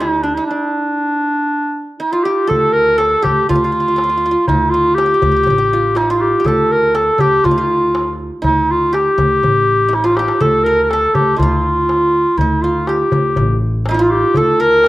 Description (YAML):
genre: Arabic maqam ensemble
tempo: 121 BPM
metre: 4/4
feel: straight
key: D maqam bayati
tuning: A4 = 438 Hz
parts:
  - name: warm clarinet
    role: melody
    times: 0.0-14.9 s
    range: D4 to Bb4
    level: -14 LUFS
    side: equal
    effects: slapback echo
  - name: qanun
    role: second line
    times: 0.0-14.9 s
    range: D4 to Bb4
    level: -20 LUFS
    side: right 2 dB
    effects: none
  - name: upright bass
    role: bass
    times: 0.0-14.9 s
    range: A1 to D2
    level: -21 LUFS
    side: equal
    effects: none
  - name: darbuka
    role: percussion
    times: 0.0-14.9 s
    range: none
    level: -22 LUFS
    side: left 2 dB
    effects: none
room: little or no reverb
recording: recorded outdoors, with no room sound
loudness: -12 LUFS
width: side -16 dB against mid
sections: 0.0-2.5 A section; 2.5-14.9 B section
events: drum fill 9.9-10.4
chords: none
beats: 0.02 | 0.51 1.01 1.51 2.00 | 2.50 2.99 3.49 3.98 | 4.47 4.97 5.46 5.96 | 6.45 6.95 7.44 7.93 | 8.43 8.92 9.42 9.91 | 10.41 10.90 11.39 11.89 | 12.38 12.88 13.37 13.87 | 14.36 14.86